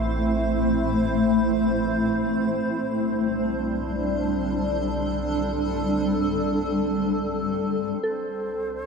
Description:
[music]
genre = ambient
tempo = free time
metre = none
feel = none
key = unclear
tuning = A4 = 440 Hz
[part]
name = granular cloud pad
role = sustained chords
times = 0.0-8.9 s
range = G3 to C5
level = -23 LUFS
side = equal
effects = built-in reverb
[part]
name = round analog bass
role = bass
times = 0.0-8.9 s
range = A1 to C2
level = -33 LUFS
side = equal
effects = none
[part]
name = organ-like drone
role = drone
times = 0.0-8.1 s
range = C4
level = -35 LUFS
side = right 1 dB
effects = ensemble chorus, built-in reverb
[part]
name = reedy alto flute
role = melody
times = 8.0-8.9 s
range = C5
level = -41 LUFS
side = left 2 dB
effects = none
[part]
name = soft synth bell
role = arpeggios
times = 8.0-8.9 s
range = A4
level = -28 LUFS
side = right 2 dB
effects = chorus
[sound]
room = wet huge ambient reverb, RT60 8.8 s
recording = none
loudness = -22 LUFS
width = side -5 dB against mid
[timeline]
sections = 0.0-8.0 A section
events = fade-out on analog synth bass 0.0-8.0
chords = 0.0 Am; 2.7 Gadd9/B; 8.0 C5

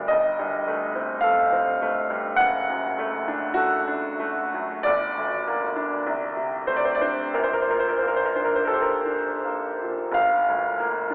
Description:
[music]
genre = classical, romantic nocturne for solo piano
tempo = 38-54 BPM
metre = 4/4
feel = rubato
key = G minor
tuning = A4 = 440 Hz
[part]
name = bright grand piano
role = solo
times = 0.0-11.1 s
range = F#1 to F#5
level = -21 LUFS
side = equal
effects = none
[sound]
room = wet cathedral reverb, RT60 6.8 s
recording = recorded in a church or concert hall, vinyl crackle, telephone sound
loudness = -21 LUFS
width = side -31 dB against mid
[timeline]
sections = 0.0-10.2 A section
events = none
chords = 0.1 Am7b5/G; 2.4 D/F#; 4.9 Gm; 6.1 D5/C; 7.3 Gm/Bb; 10.2 Gm

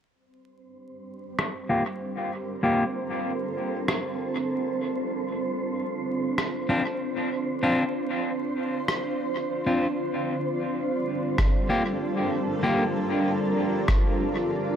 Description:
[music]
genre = ambient dub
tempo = 96 BPM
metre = 4/4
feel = straight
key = G minor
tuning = A4 = 437 Hz
[part]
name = granular cloud pad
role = sustained chords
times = 1.0-14.8 s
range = G3 to C5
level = -29 LUFS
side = equal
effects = built-in reverb
[part]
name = wind-like tuned noise texture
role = texture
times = 0.9-14.8 s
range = C4 to C5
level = -31 LUFS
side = right 3 dB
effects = built-in reverb
[part]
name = electronic rim click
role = drums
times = 1.4-14.0 s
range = none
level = -30 LUFS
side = equal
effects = low-pass filter on snare, low-pass filter on room, dub echo
[part]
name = electric guitar at the edge of break-up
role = stabs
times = 1.7-2.8, 6.7-12.8 s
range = Bb3 to G4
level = -27 LUFS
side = left 1 dB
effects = low-pass filter, dub echo
[part]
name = electronic kick drum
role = drums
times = 11.4-14.0 s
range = none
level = -23 LUFS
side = equal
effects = none
[sound]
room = moderate spring reverb, RT60 1.3 s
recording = dark, warm production, vinyl crackle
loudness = -24 LUFS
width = side -9 dB against mid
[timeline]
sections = 0.1-14.8 A section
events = fade-in on ambient pad 0.1-14.8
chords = 0.1 Gm7; 5.1 Dm7; 10.1 Gm7

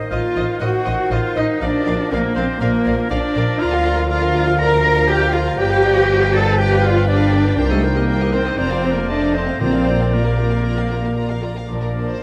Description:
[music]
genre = quick classical-period movement for symphony orchestra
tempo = 120 BPM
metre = 4/4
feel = straight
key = Bb major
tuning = A4 = 442 Hz
[part]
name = bright clarinet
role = second line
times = 0.0-12.2 s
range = Bb4 to Eb5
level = -31 LUFS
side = equal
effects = none
[part]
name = clear oboe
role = second line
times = 0.0-12.2 s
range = A4 to Bb5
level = -29 LUFS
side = equal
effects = none
[part]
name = mellow hollow concert flute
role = second line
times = 0.0-11.4 s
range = A4 to Bb5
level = -31 LUFS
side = equal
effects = none
[part]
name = dark bassoon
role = accompaniment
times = 0.0-12.2 s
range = Bb2 to Bb3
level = -30 LUFS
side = equal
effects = none
[part]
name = rich chamber violin section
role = melody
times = 0.1-12.2 s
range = Bb4 to Bb5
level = -34 LUFS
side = equal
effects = none
[part]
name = warm chamber violin section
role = second line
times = 0.1-12.2 s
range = D4 to G5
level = -33 LUFS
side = equal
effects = none
[part]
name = warm symphonic viola section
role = accompaniment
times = 0.1-12.2 s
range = F3 to C5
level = -32 LUFS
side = equal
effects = none
[part]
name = dark French horn section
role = sustained chords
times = 0.1-11.4 s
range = A3 to Bb4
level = -26 LUFS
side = equal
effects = none
[part]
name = rich chamber double bass section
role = bass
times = 0.1-12.2 s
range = F1 to D2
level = -23 LUFS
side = equal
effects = none
[part]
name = warm chamber cello section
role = bass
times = 0.1-12.2 s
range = Bb2 to Bb4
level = -24 LUFS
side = equal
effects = none
[part]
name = timpani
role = percussion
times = 9.6-10.4 s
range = Bb2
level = -29 LUFS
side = equal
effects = none
[sound]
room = wet cathedral reverb, RT60 5.1 s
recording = in a vast, echoing space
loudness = -17 LUFS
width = mono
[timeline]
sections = 0.0-11.7 A section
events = none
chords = 0.0 Adim7; 1.6 Bb; 3.6 Bb/D; 5.6 G7; 7.6 Cm7; 8.6 Bb/F; 9.1 F7; 9.6 Bb

